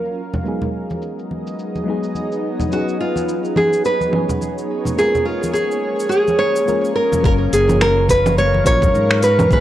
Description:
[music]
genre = sunset chillout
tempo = 106 BPM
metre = 4/4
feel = swing 58% on 16ths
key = unclear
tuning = A4 = 439 Hz
[part]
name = mellow FM electric piano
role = accompaniment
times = 0.0-9.6 s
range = F#3 to A#4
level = -25 LUFS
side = moving between left 6 dB and right 3 dB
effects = chorus, auto-pan, low-pass filter, tape echo
[part]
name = shimmering ambient pad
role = sustained chords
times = 0.0-9.6 s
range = E#3 to D#6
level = -25 LUFS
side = equal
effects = chorus, built-in reverb
[part]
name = smooth R&B drum kit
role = drums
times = 0.0-9.6 s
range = cabasa, congas, finger snaps, hi-hat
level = -23 LUFS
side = right 1 dB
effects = low-pass filter on perc, low-pass filter on hats, low-pass filter on snare
[part]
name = congas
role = percussion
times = 0.3-9.5 s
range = none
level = -26 LUFS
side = equal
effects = none
[part]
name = nylon-string guitar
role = melody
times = 2.7-9.6 s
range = E#4 to C#5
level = -17 LUFS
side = right 1 dB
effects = tape echo
[part]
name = fingered electric bass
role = bass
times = 7.2-9.6 s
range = F#1 to G#2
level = -19 LUFS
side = equal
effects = none
[part]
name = electronic kick drum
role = drums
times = 7.2-9.6 s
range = none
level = -17 LUFS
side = equal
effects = none
[sound]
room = light reverb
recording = dry, gritty hardware recording, cassette tape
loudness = -15 LUFS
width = side -13 dB against mid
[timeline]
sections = 0.0-7.2 A section; 7.2-9.6 B section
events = filter sweep on FM electric piano 0.0-7.2; filter sweep on ambient pad 0.0-7.2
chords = 0.2 G#m7; 2.7 B69; 5.0 A#m7; 7.2 F#maj7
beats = | 0.45 1.02 1.59 2.15 | 2.72 3.28 3.85 4.42 | 4.98 5.55 6.11 6.68 | 7.25 7.81 8.38 8.94 | 9.51

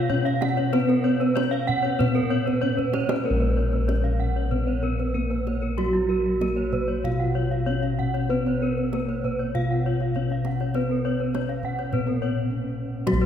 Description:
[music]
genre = Balinese gamelan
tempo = 95-106 BPM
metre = 4/4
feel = straight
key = unclear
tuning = A4 = 440 Hz
[part]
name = gamelan-type bronze metallophone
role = melody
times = 0.0-13.3 s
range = Gb3 to F4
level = -27 LUFS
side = equal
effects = none
[part]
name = gamelan-type bronze metallophone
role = arpeggios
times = 0.0-12.2 s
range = F4 to Gb5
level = -32 LUFS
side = right 4 dB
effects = none
[part]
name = gamelan-type bossed gongs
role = bass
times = 0.0-13.3 s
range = Bb1 to Cb5+35c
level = -25 LUFS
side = left 1 dB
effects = none
[part]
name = gamelan-type bronze metallophone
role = arpeggios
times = 0.1-13.3 s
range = Gb4 to F5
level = -31 LUFS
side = left 5 dB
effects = none
[part]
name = kendang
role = percussion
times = 0.1-13.2 s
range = none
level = -34 LUFS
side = right 2 dB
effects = none
[sound]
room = wet cathedral reverb, RT60 5.6 s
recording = recorded in a church or concert hall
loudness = -22 LUFS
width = side -9 dB against mid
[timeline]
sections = 0.0-3.3 A section; 3.3-13.1 A section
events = drum fill 2.6-3.3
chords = none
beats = 0.10 | 0.73 1.36 1.99 2.62 | 3.25 3.88 4.52 5.15 | 5.78 6.41 7.04 7.67 | 8.31 8.93 9.55 10.16 | 10.76 11.35 11.93 12.51 | 13.08

